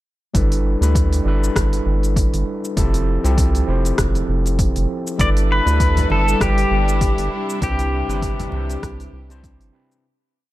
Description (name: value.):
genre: sunset chillout.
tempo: 99 BPM.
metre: 4/4.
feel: swing 56% on 16ths.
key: G mixolydian.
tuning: A4 = 442 Hz.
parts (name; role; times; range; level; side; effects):
overdriven tine electric piano; accompaniment; 0.3-10.1 s; C3 to C5; -24 LUFS; equal; auto-pan, ping-pong delay.
round analog bass; bass; 0.3-9.7 s; F1 to D2; -19 LUFS; equal; none.
electronic kick drum; drums; 0.3-9.6 s; none; -21 LUFS; equal; overdrive.
smooth R&B drum kit; drums; 0.3-10.0 s; hi-hat, rim click, shaker; -28 LUFS; left 1 dB; none.
pedal steel guitar; melody; 5.2-9.4 s; G4 to D5; -22 LUFS; left 2 dB; ping-pong delay.
warm chamber string section; sustained chords; 5.2-10.0 s; C3 to B4; -28 LUFS; right 1 dB; none.
congas; percussion; 6.0-8.7 s; none; -28 LUFS; left 3 dB; none.
room: little or no reverb.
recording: dark, warm production.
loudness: -16 LUFS.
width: side -16 dB against mid.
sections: 0.3-10.0 groove.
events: fade-out 6.8-10.0.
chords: 0.3 G69; 2.8 Fmaj9; 5.2 G69; 7.3 Cmaj9.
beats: | 0.34 0.95 1.56 2.16 | 2.77 3.38 3.98 4.59 | 5.19 5.80 6.41 7.01 | 7.62 8.22 8.83 9.44.